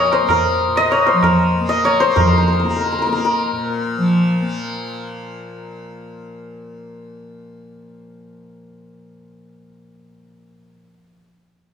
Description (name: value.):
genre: indian classical, Hindustani.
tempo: 191 BPM.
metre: 4/4.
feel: straight.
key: unclear.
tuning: A4 = 440 Hz.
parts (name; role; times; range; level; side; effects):
santur; melody; 0.0-6.1 s; Bb4 to Ab5; -17 LUFS; left 3 dB; none.
tanpura; drone; 0.0-11.0 s; Bb2 to Bb3; -22 LUFS; equal; none.
tabla; percussion; 0.1-2.3 s; none; -19 LUFS; right 4 dB; none.
room: wet large studio reverb, RT60 1.4 s.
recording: band playing live in one room.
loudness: -14 LUFS.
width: side -7 dB against mid.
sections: 0.0-2.2 A section; 2.2-4.7 B section.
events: none.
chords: none.